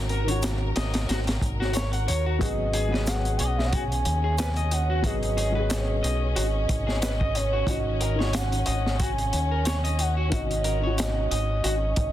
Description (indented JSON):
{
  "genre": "trip hop",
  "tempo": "91 BPM",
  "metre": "4/4",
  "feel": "swing 56% on 16ths",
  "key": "G# minor",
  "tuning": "A4 = 440 Hz",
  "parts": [
    { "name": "felt-muted upright piano", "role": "accompaniment", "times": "0.0-12.1 s", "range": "D#3 to G#4", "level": "-34 LUFS", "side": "left 2 dB", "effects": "harmonic tremolo, vintage 12-bit sampler grit, tape echo" },
    { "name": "warm studio string section", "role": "sustained chords", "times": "0.0-12.1 s", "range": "C#4 to A#4", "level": "-36 LUFS", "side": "left 3 dB", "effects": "none" },
    { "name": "deep dub fingered electric bass", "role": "bass", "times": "0.0-12.1 s", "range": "G#1 to D#2", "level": "-26 LUFS", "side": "equal", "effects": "tube saturation" },
    { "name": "electric guitar at the edge of break-up", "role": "arpeggios", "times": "0.1-11.7 s", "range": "F#4 to F#5", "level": "-34 LUFS", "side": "left 2 dB", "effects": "digital delay" },
    { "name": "crunchy breakbeat drum kit", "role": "drums", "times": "0.1-12.1 s", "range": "hi-hat, kick drum, snare drum", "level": "-29 LUFS", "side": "equal", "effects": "none" },
    { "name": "egg shaker", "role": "percussion", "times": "0.4-11.1 s", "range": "none", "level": "-40 LUFS", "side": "equal", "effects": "none" },
    { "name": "pure breathy sine lead", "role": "melody", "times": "2.4-12.1 s", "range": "C#5 to G#5", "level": "-30 LUFS", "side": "right 1 dB", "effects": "chorus, tape echo" }
  ],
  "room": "small room ambience",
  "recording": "dense, heavily limited modern master",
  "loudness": "-23 LUFS",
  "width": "side -12 dB against mid",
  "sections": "0.0-12.1 A section",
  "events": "none",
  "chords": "0.0 D#m7/G#; 2.4 G#m7; 7.7 D#m7/G#"
}